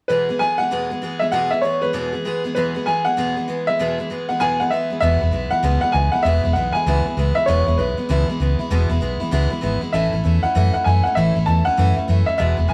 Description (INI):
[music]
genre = rockabilly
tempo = 195 BPM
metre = 4/4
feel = swing 63% on 8ths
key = E major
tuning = A4 = 440 Hz
[part]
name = bright upright piano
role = melody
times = 0.1-12.7 s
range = B4 to A5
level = -22 LUFS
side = equal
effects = none
[part]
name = picked steel-string acoustic guitar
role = accompaniment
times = 0.1-12.7 s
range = E2 to G#4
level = -26 LUFS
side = equal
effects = none
[part]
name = fingered electric bass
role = bass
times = 5.0-12.7 s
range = E1 to F#2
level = -21 LUFS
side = equal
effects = none
[sound]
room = moderate studio reverb, RT60 0.6 s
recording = band playing live in one room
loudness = -19 LUFS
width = mono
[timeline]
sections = 0.1-5.0 A section; 5.0-12.7 B section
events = none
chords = 0.1 E; 9.9 A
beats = | 0.10 0.40 0.71 1.02 | 1.33 1.64 1.95 2.25 | 2.56 2.87 3.18 3.49 | 3.79 4.10 4.41 4.72 | 5.02 5.33 5.64 5.95 | 6.25 6.56 6.87 7.17 | 7.48 7.79 8.10 8.40 | 8.71 9.02 9.32 9.63 | 9.94 10.24 10.55 10.86 | 11.16 11.47 11.78 12.08 | 12.39 12.70